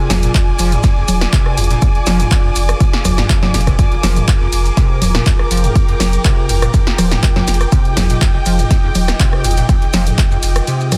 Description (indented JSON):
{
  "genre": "acid house",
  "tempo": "122 BPM",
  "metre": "4/4",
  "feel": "straight",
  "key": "F dorian",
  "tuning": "A4 = 443 Hz",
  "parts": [
    { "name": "string machine, full ensemble", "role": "sustained chords", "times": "0.0-11.0 s", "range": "F4 to Eb5", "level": "-28 LUFS", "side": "equal", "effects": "ensemble chorus, sidechain pumping" },
    { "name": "acid bass, square", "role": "riff", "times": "0.0-11.0 s", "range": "F1 to F3", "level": "-23 LUFS", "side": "equal", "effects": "overdrive, analog chorus" },
    { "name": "dark chamber string section", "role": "texture", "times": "0.0-11.0 s", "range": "G5 to D6", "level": "-26 LUFS", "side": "equal", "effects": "sidechain pumping" },
    { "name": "warm sub bass", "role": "bass", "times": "0.1-10.6 s", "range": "Eb1 to F1", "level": "-18 LUFS", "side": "equal", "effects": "tube saturation, sidechain pumping" },
    { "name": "punchy analog drum machine", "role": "drums", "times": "0.1-11.0 s", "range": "congas, handclaps, hi-hat, ride cymbal, rim click, snare drum", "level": "-22 LUFS", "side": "equal", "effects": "none" },
    { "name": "maracas", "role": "percussion", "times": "0.1-11.0 s", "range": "none", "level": "-30 LUFS", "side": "equal", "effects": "none" },
    { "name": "electronic kick drum", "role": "drums", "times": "0.3-10.3 s", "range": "none", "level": "-15 LUFS", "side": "equal", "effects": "none" }
  ],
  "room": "little or no reverb",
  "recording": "dense, heavily limited modern master",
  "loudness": "-14 LUFS",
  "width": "mono",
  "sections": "0.0-11.0 A section",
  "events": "none",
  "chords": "0.0 Fm",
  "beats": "0.35 0.84 1.33 | 1.82 2.31 2.81 3.30 | 3.79 4.28 4.77 5.26 | 5.75 6.25 6.74 7.23 | 7.72 8.21 8.71 9.20 | 9.69 10.18 10.67"
}